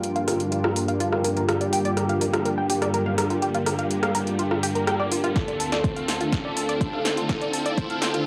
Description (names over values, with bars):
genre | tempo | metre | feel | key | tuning
melodic techno | 124 BPM | 4/4 | straight | G minor | A4 = 440 Hz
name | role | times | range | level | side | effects
lush unison pad | sustained chords | 0.0-8.3 s | D2 to G4 | -32 LUFS | equal | chorus, sidechain pumping
brassy analog pad | stabs | 0.0-8.2 s | D3 to G4 | -32 LUFS | equal | chorus, sidechain pumping, analog delay
deep house drum kit | drums | 0.0-8.2 s | hi-hat, rim click, snare drum, toms | -31 LUFS | equal | overdrive, high-pass filter on hats, high-pass filter on snare, high-pass filter on toms, high-pass filter on room
riser | sound effects | 1.4-8.3 s | none | -38 LUFS | equal | none
granular cloud pad | texture | 0.0-8.3 s | D4 to G5 | -34 LUFS | equal | built-in reverb, sidechain pumping
tight sequenced synth | arpeggios | 0.2-8.2 s | F4 to A5 | -31 LUFS | equal | chorus, sidechain pumping, analog delay
fat analog lead | melody | 1.5-8.2 s | G4 to A4 | -33 LUFS | equal | subtle chorus, sidechain pumping, analog delay
electronic kick drum | drums | 5.4-7.9 s | none | -29 LUFS | equal | overdrive
room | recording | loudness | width
light reverb | dry, gritty hardware recording, cassette tape, high-pass filter | -24 LUFS | mono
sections
0.0-8.3 A section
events
build-up 0.0-8.3; filter sweep on synth arpeggio sound 0.0-8.3; filter sweep 0.0-8.3; riser 1.4-8.3; drum fill 5.4-8.3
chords
0.0 Gm7; 5.4 Dm7